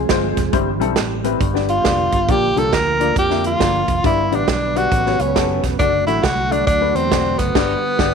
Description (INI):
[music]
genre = uptempo gospel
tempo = 137 BPM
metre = 4/4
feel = swing 64% on 8ths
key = unclear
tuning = A4 = 440 Hz
[part]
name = mellow tonewheel organ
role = sustained chords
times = 0.0-8.1 s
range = D3 to B4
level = -25 LUFS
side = right 10 dB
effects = fast rotary speaker, chorus vibrato
[part]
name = fingered electric bass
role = bass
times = 0.0-8.1 s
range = E1 to F2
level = -25 LUFS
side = equal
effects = none
[part]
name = warm baby grand piano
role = accompaniment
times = 0.1-8.1 s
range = G2 to E5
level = -22 LUFS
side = left 13 dB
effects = none
[part]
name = natural country drum kit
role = drums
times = 0.1-8.1 s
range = crash cymbal, hi-hat, kick drum, snare drum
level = -21 LUFS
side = right 4 dB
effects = none
[part]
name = breathy tenor saxophone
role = melody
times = 1.7-8.1 s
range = B3 to Bb4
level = -18 LUFS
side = equal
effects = tape echo
[sound]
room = light reverb, small room reverb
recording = 1960s-style stereo with parts hard left and right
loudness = -15 LUFS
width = side -6 dB against mid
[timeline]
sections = 0.0-8.1 A section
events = band accent 7.6-8.1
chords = 0.0 Fm; 0.5 C/G; 1.4 G; 2.3 Bb; 4.0 G; 4.9 A13; 5.8 D/F#; 7.6 G